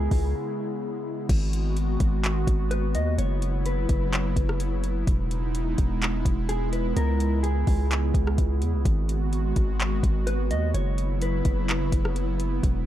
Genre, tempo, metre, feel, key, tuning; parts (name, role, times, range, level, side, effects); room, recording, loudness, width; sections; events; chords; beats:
hip hop, atmospheric cloud-rap; 127 BPM; 4/4; half-time; G# minor; A4 = 440 Hz
mellow electric guitar; melody; 0.0-12.6 s; G#4 to D#5; -33 LUFS; left 1 dB; digital delay
airy breathy pad; sustained chords; 0.0-12.9 s; C#3 to F#4; -30 LUFS; right 1 dB; chorus, sidechain pumping
long sustained 808-style bass; bass; 0.0-12.9 s; E1 to E2; -25 LUFS; equal
smooth R&B drum kit; drums; 0.1-12.7 s; crash cymbal, handclaps, hi-hat, kick drum, rim click; -26 LUFS; equal; overdrive
digital ambience; dark, warm production; -23 LUFS; side -12 dB against mid
0.0-1.3 A section; 1.3-12.9 B section
break 0.3-1.3
0.0 C#m7; 1.3 G#m7; 3.2 F#7sus4; 5.1 Emaj7; 7.0 C#m7; 8.9 G#m7; 10.7 F#7sus4
0.35 0.82 | 1.29 1.77 2.24 2.71 | 3.19 3.66 4.13 4.60 | 5.08 5.55 6.02 6.49 | 6.96 7.44 7.91 8.38 | 8.85 9.33 9.80 10.27 | 10.74 11.22 11.69 12.16 | 12.63